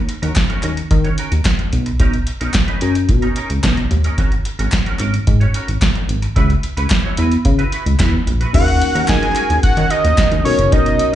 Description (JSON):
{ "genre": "early-eighties boogie funk", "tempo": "110 BPM", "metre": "4/4", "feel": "straight", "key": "unclear", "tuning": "A4 = 440 Hz", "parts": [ { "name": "clean electric guitar", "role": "riff", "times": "0.1-11.0 s", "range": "C#4 to C#5", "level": "-26 LUFS", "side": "right 3 dB", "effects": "analog chorus, slapback echo" }, { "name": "electro analog drum machine", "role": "drums", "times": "0.1-11.1 s", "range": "crash cymbal, hi-hat, kick drum, snare drum", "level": "-17 LUFS", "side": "equal", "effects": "none" }, { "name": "chorused synth bass", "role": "bass", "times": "0.2-11.0 s", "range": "F#1 to D#3", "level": "-16 LUFS", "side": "equal", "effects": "none" }, { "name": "group handclap", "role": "percussion", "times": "0.4-10.3 s", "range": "none", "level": "-29 LUFS", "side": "left 3 dB", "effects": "none" }, { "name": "fat analog lead", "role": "melody", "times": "8.5-11.2 s", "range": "C#5 to G#5", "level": "-16 LUFS", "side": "right 2 dB", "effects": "slapback echo, tape echo" }, { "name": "mellow tine electric piano", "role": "accompaniment", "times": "8.5-11.2 s", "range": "C#4 to A#4", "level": "-22 LUFS", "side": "left 8 dB", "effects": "medium stereo tremolo, slapback echo" } ], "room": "digital ambience", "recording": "live gig heard through the venue's PA, club reverb, nothing above 10.3 kHz", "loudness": "-13 LUFS", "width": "side -12 dB against mid", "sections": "0.0-8.5 A section; 8.5-11.2 B section", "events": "none", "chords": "0.0 D#m7; 1.7 Bmaj9; 4.2 G#9sus4; 6.4 C#m7; 8.5 D#m7; 10.5 Bmaj9" }